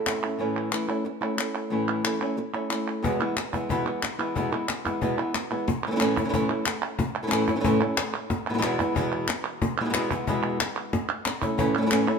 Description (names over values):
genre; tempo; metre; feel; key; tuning
flamenco; 182 BPM; 4/4; straight; A major; A4 = 440 Hz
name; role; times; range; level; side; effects
flamenco guitar; melody; 0.0-12.2 s; E2 to A4; -25 LUFS; equal; tape echo
cajon; percussion; 0.1-0.2, 3.0-12.1 s; none; -32 LUFS; left 5 dB; none
palmas hand claps; percussion; 0.1-12.2 s; none; -30 LUFS; right 1 dB; none
room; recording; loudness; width
moderate stone room reverb, RT60 1.0 s; none; -24 LUFS; side -6 dB against mid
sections
0.4-5.7 A section; 5.7-12.2 A section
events
none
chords
0.4 A; 3.0 E; 5.7 A; 8.3 E; 10.9 A